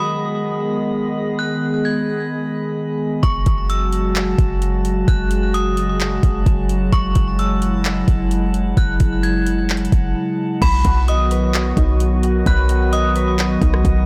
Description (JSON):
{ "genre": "hip hop, atmospheric cloud-rap", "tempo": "130 BPM", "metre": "4/4", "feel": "half-time", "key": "F# dorian", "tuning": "A4 = 441 Hz", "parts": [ { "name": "metallic FM bell", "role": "melody", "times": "0.0-13.4 s", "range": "B5 to G#6", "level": "-28 LUFS", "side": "equal", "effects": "chorus, low-pass filter, delay" }, { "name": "warbly tape-like pad", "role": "sustained chords", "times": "0.0-14.1 s", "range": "C#3 to G#4", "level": "-24 LUFS", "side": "equal", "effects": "chorus, built-in reverb, sidechain pumping" }, { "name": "drifting glass-harmonics texture", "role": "texture", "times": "0.0-14.1 s", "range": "G#3 to B5", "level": "-34 LUFS", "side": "equal", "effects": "chorus, built-in reverb" }, { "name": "warm 808-style bass", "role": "bass", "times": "3.2-14.1 s", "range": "F#1 to B1", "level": "-21 LUFS", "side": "equal", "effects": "none" }, { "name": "smooth R&B drum kit", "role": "drums", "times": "3.2-14.0 s", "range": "crash cymbal, handclaps, hi-hat, kick drum, rim click", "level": "-22 LUFS", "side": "equal", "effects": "none" }, { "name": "concert harp", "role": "arpeggios", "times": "10.6-14.1 s", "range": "D#4 to B5", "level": "-29 LUFS", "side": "equal", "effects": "low-pass filter, delay" } ], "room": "light reverb", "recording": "blown-out, overdriven recording, overdrive", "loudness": "-18 LUFS", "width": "mono", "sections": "0.0-10.6 A section; 10.6-14.1 B section", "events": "break 10.2-10.6", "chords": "0.0 G#m; 3.2 F#madd9; 10.6 B" }